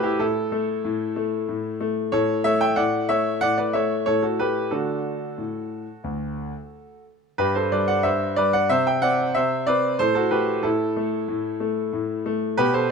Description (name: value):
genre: classical-period piano sonatina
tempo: 92 BPM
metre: 4/4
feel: straight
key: unclear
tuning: A4 = 438 Hz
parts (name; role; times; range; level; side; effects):
- clear concert grand piano; solo; 0.0-12.9 s; D2 to G5; -21 LUFS; equal; none
room: light reverb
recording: close, detailed microphones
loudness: -21 LUFS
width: side -5 dB against mid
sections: 0.0-12.9 A section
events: none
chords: 0.0 A5; 2.1 A7; 4.7 D; 7.4 G; 8.7 C; 10.0 A5